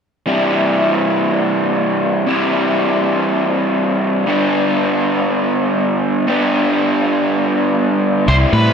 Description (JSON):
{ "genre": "rock", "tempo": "free time", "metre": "none", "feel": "none", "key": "G major", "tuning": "A4 = 440 Hz", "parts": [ { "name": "raw garage guitar", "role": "riff", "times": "0.3-8.7 s", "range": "G2 to G4", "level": "-14 LUFS", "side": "equal", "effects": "overdrive, spring reverb" }, { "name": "octave-fuzz lead guitar", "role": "melody", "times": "8.3-8.7 s", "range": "B4 to C5", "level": "-17 LUFS", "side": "equal", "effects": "distortion" }, { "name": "fingered electric bass", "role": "bass", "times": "8.3-8.7 s", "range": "C2 to A2", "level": "-13 LUFS", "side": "equal", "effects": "none" } ], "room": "moderate plate reverb, RT60 2.9 s", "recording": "dreamy mix soaked in reverb", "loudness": "-14 LUFS", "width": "side -6 dB against mid", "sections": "0.3-8.3 A section", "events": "none", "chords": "0.3 C; 4.3 G", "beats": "free time" }